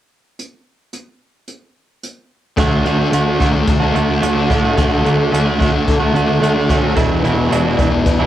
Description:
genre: rock, shoegaze and dream pop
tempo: 109 BPM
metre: 4/4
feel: straight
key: D lydian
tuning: A4 = 442 Hz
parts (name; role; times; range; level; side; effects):
- jazz brush drum kit; drums; 0.4-8.2 s; hi-hat, kick drum; -20 LUFS; equal; cassette tape
- fingerpicked twelve-string acoustic guitar; arpeggios; 2.6-8.3 s; E3 to D4; -24 LUFS; left 4 dB; ensemble chorus, cassette tape, analog delay
- direct-recorded clean electric guitar; riff; 2.6-8.3 s; E2 to F#4; -18 LUFS; right 7 dB; reverse reverb, cassette tape
- thick fuzz guitar; riff; 2.6-8.3 s; E2 to D4; -18 LUFS; left 5 dB; distortion, wide subtle chorus, cassette tape
- fuzz picked electric bass; bass; 2.6-8.3 s; E1 to A2; -19 LUFS; equal; overdrive, tube saturation
room: moderate booth ambience, RT60 0.2 s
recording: home recording on cassette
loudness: -13 LUFS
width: side -12 dB against mid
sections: 0.4-2.6 A section; 2.6-8.3 B section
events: none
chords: 0.4 N.C.; 2.6 D; 7.0 E7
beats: | 0.39 0.93 1.48 2.03 | 2.58 3.12 3.67 4.22 | 4.77 5.32 5.87 6.42 | 6.97 7.51 8.06

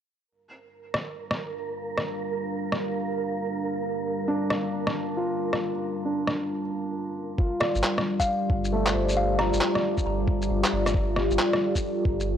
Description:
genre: future garage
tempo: 135 BPM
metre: 4/4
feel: swing 66% on 16ths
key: G minor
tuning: A4 = 440 Hz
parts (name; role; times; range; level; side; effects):
- deep dark ambient pad; sustained chords; 1.5-12.4 s; G3 to F5; -28 LUFS; equal; chorus, built-in reverb, vintage 12-bit sampler grit, sidechain pumping
- wind-like tuned noise texture; texture; 1.0-7.4 s; Bb4; -35 LUFS; right 6 dB; built-in reverb
- electronic rim click, shaker and handclaps; drums; 0.9-12.3 s; none; -28 LUFS; equal; small room ambience
- dark upright piano; accompaniment; 4.3-12.4 s; A3 to D5; -31 LUFS; equal; sidechain pumping, low-pass filter, tape echo
- electronic kick drum; drums; 7.4-12.2 s; none; -26 LUFS; equal; small room ambience
- kalimba; melody; 7.6-9.8 s; D5 to Bb5; -31 LUFS; left 2 dB; vintage 12-bit sampler grit, tape echo
- soft dub sub bass; bass; 7.8-12.4 s; G1; -29 LUFS; equal; tube saturation, sidechain pumping
room: light reverb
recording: dry, gritty hardware recording, transformer saturation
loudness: -24 LUFS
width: side -9 dB against mid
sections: 0.3-7.4 A section; 7.4-12.4 B section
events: filter sweep on upright piano 7.4-12.4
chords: 0.3 Gm7; 7.4 G7(no3)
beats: | 0.28 0.72 1.16 1.61 | 2.05 2.50 2.94 3.39 | 3.83 4.28 4.72 5.16 | 5.61 6.05 6.50 6.94 | 7.39 7.83 8.28 8.72 | 9.16 9.61 10.05 10.50 | 10.94 11.39 11.83 12.28

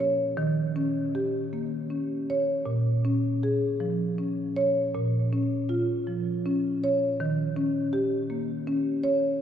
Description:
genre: classical, contemporary piece for solo marimba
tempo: 80 BPM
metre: 3/4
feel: rubato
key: unclear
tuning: A4 = 440 Hz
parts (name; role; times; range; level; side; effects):
- marimba with soft mallets; solo; 0.0-9.4 s; Bb2 to Db5; -24 LUFS; equal; none
room: wet cathedral reverb, RT60 6.0 s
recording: heard from further back in the room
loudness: -24 LUFS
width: side -9 dB against mid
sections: 0.0-9.4 A section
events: none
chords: 0.4 Eb7; 2.7 Bbm7; 4.9 Db6/Bb; 7.2 Eb7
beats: | 0.39 1.16 1.92 | 2.68 3.44 4.19 | 4.95 5.70 6.45 | 7.20 7.94 8.69

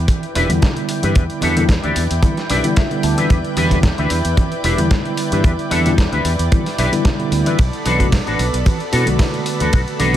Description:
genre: nu-disco, nu disco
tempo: 112 BPM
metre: 4/4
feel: swing 54% on 16ths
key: E minor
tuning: A4 = 440 Hz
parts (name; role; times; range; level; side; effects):
- lush unison pad; sustained chords; 0.0-10.2 s; B3 to B5; -24 LUFS; equal; chorus, sidechain pumping
- fingered electric bass; bass; 0.0-10.2 s; E1 to B2; -20 LUFS; equal; none
- electric guitar with an envelope filter; riff; 0.1-10.2 s; D4 to A5; -22 LUFS; left 2 dB; analog chorus, ping-pong delay
- dusty soul sampler-style drum kit; drums; 0.1-10.2 s; hi-hat, ride cymbal, snare drum; -26 LUFS; equal; none
- kick drum; drums; 0.1-9.8 s; none; -14 LUFS; equal; none
- congas; percussion; 0.1-10.2 s; none; -26 LUFS; right 5 dB; none
- mellow tine electric piano; accompaniment; 0.5-10.2 s; D3 to F#4; -22 LUFS; moving between left 5 dB and right 2 dB; auto-pan, sidechain pumping, ping-pong delay
room: small room ambience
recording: none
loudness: -14 LUFS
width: side -11 dB against mid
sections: 0.0-10.2 A section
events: clean electric guitar fill 2.2-3.3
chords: 0.0 Em7; 7.6 Bm7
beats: 0.09 0.62 | 1.16 1.69 2.23 2.77 | 3.30 3.84 4.37 4.91 | 5.44 5.98 6.51 7.05 | 7.59 8.12 8.66 9.19 | 9.73

